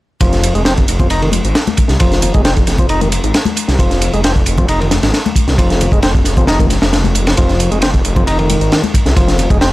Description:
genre	breakbeat, breaks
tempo	134 BPM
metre	4/4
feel	straight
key	F minor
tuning	A4 = 441 Hz
part	percussive tonewheel organ	riff	0.2-9.7 s	Eb3 to Eb4	-18 LUFS	equal	overdrive, tube saturation, ping-pong delay
part	detuned saw bass	bass	0.2-9.7 s	F1 to C2	-16 LUFS	equal	none
part	crunchy breakbeat drum kit	drums	0.2-9.7 s	kick drum, ride cymbal, snare drum	-13 LUFS	equal	none
part	electronic hi-hat	drums	0.2-9.7 s	none	-24 LUFS	right 4 dB	none
part	congas	percussion	1.0-9.5 s	none	-21 LUFS	left 5 dB	none
room	small room ambience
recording	none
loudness	-10 LUFS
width	side -18 dB against mid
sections	0.2-9.7 A section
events	none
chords	0.2 Fm7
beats	| 0.21 0.66 1.11 1.55 | 2.00 2.45 2.90 3.35 | 3.79 4.24 4.69 5.14 | 5.58 6.03 6.48 6.93 | 7.38 7.82 8.27 8.72 | 9.17 9.62

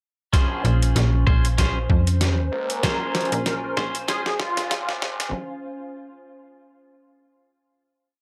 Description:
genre	glitch hop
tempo	96 BPM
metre	4/4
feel	swing 56% on 16ths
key	Bb minor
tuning	A4 = 440 Hz
part	clean electric guitar	stabs	0.3-4.3 s	Db4 to C5	-31 LUFS	equal	spring reverb, sidechain pumping, tape echo
part	gritty driven synth bass	bass	0.3-5.3 s	Ab1 to Db2	-36 LUFS	equal	distortion, tube saturation, high-pass filter
part	boom bap sampler-style drum kit	drums	0.3-5.3 s	hi-hat, snare drum	-30 LUFS	equal	none
part	electronic kick drum	drums	0.3-4.5 s	none	-23 LUFS	equal	none
part	warbly tape-like pad	texture	1.2-5.3 s	Db4 to Ab5	-35 LUFS	equal	chorus, built-in reverb, sidechain pumping
part	slap-like FM bass	bass	0.6-4.4 s	Bb1 to F2	-23 LUFS	equal	none
part	sync lead	melody	2.5-5.0 s	F4 to Bb4	-32 LUFS	equal	ensemble chorus, cassette tape, tape echo
room	moderate studio reverb, RT60 0.5 s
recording	high-pass filter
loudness	-22 LUFS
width	mono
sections	0.3-5.3 build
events	build-up 0.3-5.3; drum fill 0.3-5.3; filter sweep 0.3-5.3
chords	0.3 Bbm9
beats	| 0.34 0.96 1.59 2.21 | 2.84 3.46 4.09 4.71

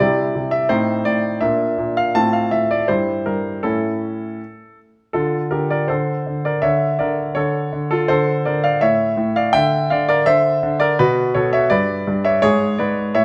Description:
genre	classical-period piano sonatina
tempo	83 BPM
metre	2/4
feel	straight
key	D minor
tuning	A4 = 442 Hz
part	bright concert grand piano	solo	0.0-13.2 s	G2 to A5	-18 LUFS	equal	none
room	moderate recital hall reverb, RT60 1.3 s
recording	close, detailed microphones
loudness	-18 LUFS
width	mono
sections	0.0-5.1 A section; 5.1-13.2 A section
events	none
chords	0.0 C; 0.7 Adim; 1.4 Bb; 2.2 F/A; 2.9 Edim/G; 3.6 A; 5.1 Dm; 5.9 Bbmaj9/D; 6.6 A/D; 8.1 D5; 8.8 A; 9.5 Dm11; 11.0 B5; 11.7 G6; 12.4 G#dim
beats	0.00 | 0.71 1.43 | 2.15 2.88 | 3.63 4.39 | 5.14 5.89 | 6.63 7.36 | 8.09 8.82 | 9.54 10.26 | 10.97 11.69 | 12.41 13.13

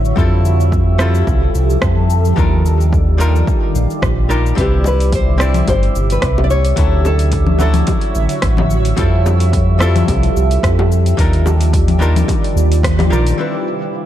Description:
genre	sunset chillout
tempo	109 BPM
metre	4/4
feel	swing 54% on 16ths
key	unclear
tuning	A4 = 442 Hz
part	archtop guitar, miked and amplified	accompaniment	0.0-14.1 s	F#3 to D5	-22 LUFS	moving between left 3 dB and right 3 dB	auto-pan, digital delay
part	shimmering ambient pad	sustained chords	0.0-14.1 s	C3 to E5	-20 LUFS	right 1 dB	chorus, built-in reverb, phaser
part	round analog bass	bass	0.0-13.3 s	G1 to F2	-14 LUFS	equal	tube saturation
part	deep house drum kit	drums	0.1-14.1 s	cabasa, congas, hi-hat, rim click	-22 LUFS	left 3 dB	overdrive, low-pass filter on perc, low-pass filter on snare, low-pass filter on hats
part	electronic kick drum	drums	0.2-13.0 s	none	-18 LUFS	equal	overdrive
part	nylon-string guitar	melody	4.6-8.7 s	G4 to D5	-21 LUFS	left 2 dB	digital delay
part	bongos	percussion	4.8-13.1 s	none	-26 LUFS	left 2 dB	none
room	light reverb, digital ambience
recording	dark, warm production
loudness	-12 LUFS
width	side -12 dB against mid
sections	0.0-13.4 A section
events	band accent 12.8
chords	0.2 Fmaj9; 2.4 Ebmaj9; 4.6 Cmaj9; 6.8 Dmaj9; 9.0 Fmaj9; 11.2 Ebmaj9; 13.4 Cmaj9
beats	| 0.17 0.72 1.27 1.82 | 2.38 2.92 3.48 4.03 | 4.58 5.13 5.68 6.23 | 6.78 7.33 7.88 8.43 | 8.98 9.53 10.08 10.63 | 11.18 11.73 12.28 12.83 | 13.38 13.93

